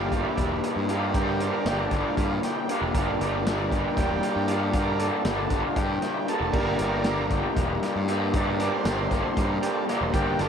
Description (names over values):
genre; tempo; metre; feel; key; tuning
psychedelic rock; 234 BPM (eighths); 7/8; straight; G dorian; A4 = 441 Hz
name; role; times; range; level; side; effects
overdriven combo organ; sustained chords; 0.0-10.5 s; G3 to D5; -30 LUFS; right 3 dB; none
raw garage guitar; riff; 0.0-10.5 s; G2 to D4; -26 LUFS; left 1 dB; overdrive, harmonic tremolo
fuzz picked electric bass; bass; 0.0-10.5 s; E1 to G2; -30 LUFS; equal; overdrive
vintage drum kit; drums; 0.1-10.5 s; crash cymbal, hi-hat, kick drum, snare drum; -30 LUFS; equal; none
room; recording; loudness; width
moderate plate reverb, RT60 2.1 s; dreamy mix soaked in reverb; -23 LUFS; side -7 dB against mid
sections
0.0-10.5 A section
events
transistor combo organ solo 0.0-10.5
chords
0.0 Gm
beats
0.13 0.38 0.64 0.90 | 1.15 1.41 1.66 1.92 2.18 2.43 2.69 | 2.95 3.20 3.46 3.72 3.97 4.23 4.49 | 4.74 5.00 5.26 5.51 5.77 6.03 6.28 | 6.54 6.80 7.05 7.31 7.57 7.83 8.08 | 8.34 8.60 8.85 9.11 9.36 9.62 9.88 | 10.13 10.39